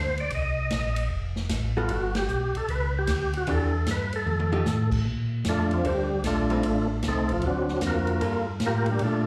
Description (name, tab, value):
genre	soul jazz organ trio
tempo	152 BPM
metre	4/4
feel	swing 66% on 8ths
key	Bb major from 5.1 s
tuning	A4 = 438 Hz
part	percussive tonewheel organ	melody	0.0-9.3 s	F3 to Eb5	-30 LUFS	equal	slow rotary speaker, overdrive, chorus vibrato, plate reverb, slapback echo
part	mellow tonewheel organ	bass	0.0-9.3 s	F1 to Bb2	-30 LUFS	equal	slow rotary speaker
part	swinging big-band drum kit	drums	0.2-9.1 s	crash cymbal, hi-hat, kick drum, ride cymbal, snare drum, toms	-37 LUFS	equal	slapback echo
part	archtop guitar, miked and amplified	accompaniment	1.8-8.5 s	D3 to C5	-33 LUFS	equal	plate reverb, slapback echo
room	moderate club reverb, RT60 0.5 s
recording	live gig heard through the venue's PA, club reverb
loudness	-26 LUFS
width	mono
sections	0.0-5.1 A section; 5.1-9.3 B section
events	band accent 2.1; drum fill 4.3-4.7; tonewheel organ solo 5.1-9.3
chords	0.3 Cm7; 1.1 Fadd9; 1.9 Gmaj9; 3.5 Em7; 4.3 F9; 5.1 Bbmaj9; 6.6 Adim; 7.4 D7alt; 8.2 Gm9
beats	| 0.32 0.72 1.11 1.51 | 1.90 2.30 2.69 3.09 | 3.48 3.88 4.27 4.67 | 5.07 5.46 5.86 6.25 | 6.65 7.04 7.44 7.83 | 8.23 8.62 9.02